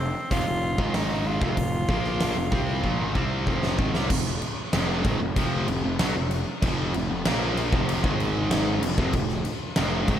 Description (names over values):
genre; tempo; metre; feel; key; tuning
classic rock; 95 BPM; 4/4; straight; F minor; A4 = 441 Hz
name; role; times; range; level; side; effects
raspy tenor saxophone; melody; 0.0-3.5 s; C4 to F4; -31 LUFS; equal; slapback echo
sludgy distorted guitar; riff; 0.0-10.2 s; F2 to C4; -28 LUFS; equal; overdrive
fuzz picked electric bass; bass; 0.0-10.2 s; F1 to C2; -29 LUFS; equal; overdrive
huge arena drum kit; drums; 0.3-10.2 s; crash cymbal, hi-hat, kick drum, snare drum; -26 LUFS; equal; none
room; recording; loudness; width
moderate concert hall reverb, RT60 1.9 s, small room ambience; big arena sound; -22 LUFS; side -10 dB against mid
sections
0.0-4.1 A section; 4.1-10.2 B section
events
drum fill 2.8-4.1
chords
0.0 F5; 0.8 Ab5; 1.4 Fm; 4.1 F5; 8.0 Ab5; 8.8 Fm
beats
0.32 0.94 | 1.57 2.21 2.84 3.47 | 4.10 4.73 5.36 5.99 | 6.62 7.25 7.88 8.51 | 9.14 9.77